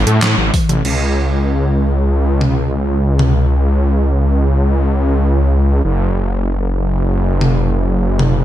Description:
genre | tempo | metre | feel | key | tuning
synthwave | 96 BPM | 4/4 | straight | unclear | A4 = 436 Hz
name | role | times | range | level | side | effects
wide detuned saw bass | bass | 0.0-8.4 s | F#1 to A2 | -13 LUFS | equal | chorus, sidechain pumping
gated 80s digital drum machine | drums | 0.1-3.3, 7.4-8.3 s | crash cymbal, handclaps, hi-hat, snare drum, toms | -17 LUFS | equal | gated reverb, gated reverb snare, overdrive
electronic kick drum | drums | 0.5-0.7 s | none | -17 LUFS | equal | none
room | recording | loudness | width
little or no reverb | none | -13 LUFS | side -12 dB against mid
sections
0.8-8.4 A section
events
drum fill 0.5-0.8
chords
none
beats
0.23 | 0.85 1.48 2.10 2.73 | 3.35 3.98 4.60 5.22 | 5.85 6.47 7.10 7.72 | 8.35

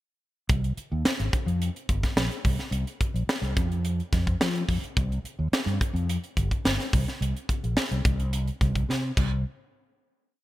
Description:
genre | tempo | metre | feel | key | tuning
electric jazz fusion | 107 BPM | 4/4 | straight | C minor | A4 = 440 Hz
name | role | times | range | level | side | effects
fretless electric bass | bass | 0.5-9.4 s | G1 to F3 | -27 LUFS | equal | analog chorus
crisp fusion drum kit | drums | 0.5-9.3 s | crash cymbal, hi-hat, kick drum, snare drum | -26 LUFS | equal | none
room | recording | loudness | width
light reverb | bright 1980s-style digital production | -24 LUFS | side -16 dB against mid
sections
0.5-9.4 A section; 9.4-10.4 final hit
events
drum fill 8.9-9.4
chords
none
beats
| 0.49 1.05 1.61 2.17 | 2.73 3.29 3.85 4.41 | 4.97 5.53 6.09 6.65 | 7.21 7.77 8.33 8.88

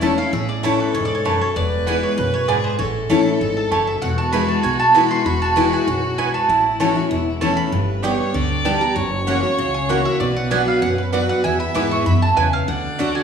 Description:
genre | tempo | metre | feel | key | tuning
bluegrass | 194 BPM | 4/4 | straight | A major | A4 = 441 Hz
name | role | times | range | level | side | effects
mandolin | melody | 0.0-13.2 s | G#4 to D6 | -21 LUFS | right 4 dB | none
clear fiddle | second line | 0.0-13.2 s | E4 to E5 | -25 LUFS | left 1 dB | none
picked steel-string acoustic guitar | accompaniment | 0.0-13.2 s | E2 to G4 | -21 LUFS | left 2 dB | none
mandolin | stabs | 0.0-13.1 s | A3 to A5 | -25 LUFS | right 4 dB | none
upright bass | bass | 0.0-13.1 s | E1 to G#2 | -25 LUFS | left 1 dB | none
room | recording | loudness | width
wet recital hall reverb, RT60 1.4 s | recorded in a church or concert hall | -16 LUFS | side -7 dB against mid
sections
0.0-7.7 A section; 7.7-13.2 A section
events
mandolin solo 0.0-13.2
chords
0.0 A; 1.6 E; 2.8 A; 4.0 E; 6.5 A; 7.7 G; 9.0 F#7; 10.2 Bm; 11.4 E; 12.7 D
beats
0.02 | 0.33 0.64 0.95 1.25 | 1.56 1.87 2.18 2.48 | 2.79 3.10 3.41 3.72 | 4.02 4.33 4.64 4.95 | 5.26 5.57 5.87 6.18 | 6.49 6.80 7.11 7.42 | 7.72 8.03 8.34 8.65 | 8.96 9.27 9.58 9.89 | 10.20 10.51 10.82 11.13 | 11.44 11.75 12.06 12.37 | 12.68 12.99

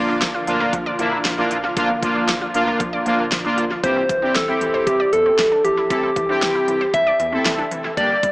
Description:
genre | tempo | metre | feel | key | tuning
synth-pop | 116 BPM | 4/4 | straight | unclear | A4 = 440 Hz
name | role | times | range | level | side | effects
analog synth brass | accompaniment | 0.0-8.2 s | Bb3 to A4 | -21 LUFS | equal | chorus, analog delay, shimmer reverb
ensemble organ-string | sustained chords | 0.0-3.8 s | Bb2 to F4 | -30 LUFS | equal | ensemble chorus, shimmer reverb
wide unison pluck | arpeggios | 0.0-8.3 s | E3 to D5 | -27 LUFS | right 1 dB | analog delay, shimmer reverb
round analog bass | bass | 0.1-8.3 s | F1 to E2 | -38 LUFS | equal | none
pop drum kit | drums | 0.2-8.3 s | hi-hat, kick drum, snare drum | -25 LUFS | equal | analog delay
soft struck synth lead | melody | 3.8-8.3 s | G4 to E5 | -18 LUFS | equal | chorus, analog delay, shimmer reverb
room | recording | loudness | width
wet spring reverb, RT60 1.3 s | echo-heavy mix, small speaker sound | -16 LUFS | side -22 dB against mid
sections
0.0-3.8 A section; 3.8-8.3 B section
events
none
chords
0.0 Bb; 3.8 C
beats
0.21 0.73 1.25 | 1.77 2.28 2.80 3.32 | 3.83 4.35 4.87 5.39 | 5.90 6.42 6.94 7.46 | 7.97

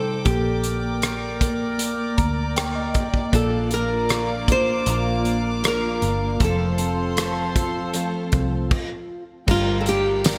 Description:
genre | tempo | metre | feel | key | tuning
pop ballad | 78 BPM | 4/4 | straight | G minor | A4 = 440 Hz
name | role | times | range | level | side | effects
flamenco guitar | melody | 0.0-10.4 s | F4 to C5 | -27 LUFS | equal | lush chorus
mellow tine electric piano | accompaniment | 0.0-10.4 s | C3 to Bb5 | -29 LUFS | equal | ensemble chorus
warm studio string section | sustained chords | 0.0-10.4 s | Bb3 to D6 | -32 LUFS | equal | none
vintage muted fingered electric bass | bass | 0.0-10.4 s | F1 to D2 | -29 LUFS | equal | none
loose indie drum kit | drums | 0.3-10.4 s | crash cymbal, hi-hat, kick drum, rim click, snare drum | -26 LUFS | equal | none
direct-recorded clean electric guitar | arpeggios | 3.3-10.4 s | Bb2 to Bb4 | -32 LUFS | equal | ensemble chorus
tambourine | percussion | 9.5-10.4 s | none | -36 LUFS | equal | none
room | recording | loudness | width
moderate lush hall reverb, RT60 2.1 s | bright 1980s-style digital production | -22 LUFS | mono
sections
0.0-9.5 A section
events
tine electric piano fill 1.8-3.3; stop 8.7-9.5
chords
0.3 Gm/Bb; 3.3 Bb; 6.4 F; 9.5 Gm7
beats
| 0.25 1.02 1.79 2.56 | 3.33 4.10 4.87 5.64 | 6.41 7.18 7.95 8.71 | 9.48 10.25

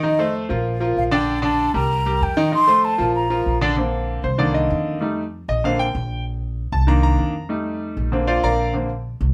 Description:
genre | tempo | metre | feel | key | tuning
latin, salsa | 193 BPM | 4/4 | straight | Bb major | A4 = 440 Hz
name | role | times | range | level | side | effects
bright concert grand piano | accompaniment | 0.0-8.9 s | D3 to Bb5 | -23 LUFS | equal | none
upright bass | bass | 0.0-9.3 s | Bb1 to F2 | -26 LUFS | equal | none
mellow hollow concert flute | melody | 0.1-3.6 s | Eb5 to C6 | -22 LUFS | equal | none
room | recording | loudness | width
wet small room reverb, RT60 0.5 s | band playing live in one room | -20 LUFS | mono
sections
0.0-3.8 A section; 3.8-9.3 B section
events
grand piano solo 3.8-9.3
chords
0.0 F7; 0.7 Bbadd9; 1.9 Cm7; 2.5 F7; 3.1 Bb; 3.8 Bbadd9; 4.4 Cm7; 5.0 F7; 5.6 Bbadd9; 6.9 Cm7; 7.5 F7; 8.1 Bbadd9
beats
| 0.04 0.35 0.66 0.97 | 1.28 1.59 1.91 2.22 | 2.53 2.84 3.15 3.46 | 3.77 4.08 4.39 4.70 | 5.01 5.33 5.63 5.95 | 6.26 6.57 6.88 7.19 | 7.50 7.81 8.12 8.43 | 8.74 9.05

